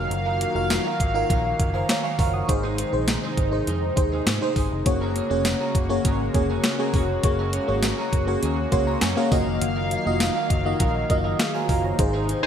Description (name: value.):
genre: 1980s-style pop.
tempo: 101 BPM.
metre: 4/4.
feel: straight.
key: unclear.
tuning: A4 = 439 Hz.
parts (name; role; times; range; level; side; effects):
FM electric piano with soft pad layer; accompaniment; 0.0-12.5 s; Ab2 to Eb6; -25 LUFS; left 1 dB; chorus, phaser.
chorused pulse-width pad; sustained chords; 0.0-12.5 s; C3 to F5; -30 LUFS; equal; none.
vintage muted fingered electric bass; bass; 0.0-12.5 s; F1 to Ab2; -27 LUFS; equal; none.
electric guitar at the edge of break-up; riff; 0.1-12.5 s; Db4 to F5; -32 LUFS; right 4 dB; wide subtle chorus, ping-pong delay.
clean 12-bit digital drum machine; drums; 0.1-12.4 s; hi-hat, kick drum, snare drum, tambourine; -24 LUFS; equal; overdrive, gated reverb.
funky polysynth comp; stabs; 12.4-12.5 s; Eb4 to C5; -19 LUFS; left 1 dB; chorus.
room: moderate lush hall reverb, RT60 1.6 s, digital ambience.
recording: bright 1980s-style digital production.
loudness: -20 LUFS.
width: side -8 dB against mid.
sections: 0.0-12.5 A section.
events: FM electric piano fill 8.4-9.6; band accent 12.0-12.5.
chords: 0.0 Ebmadd9; 2.5 Ab; 4.9 Gbadd9.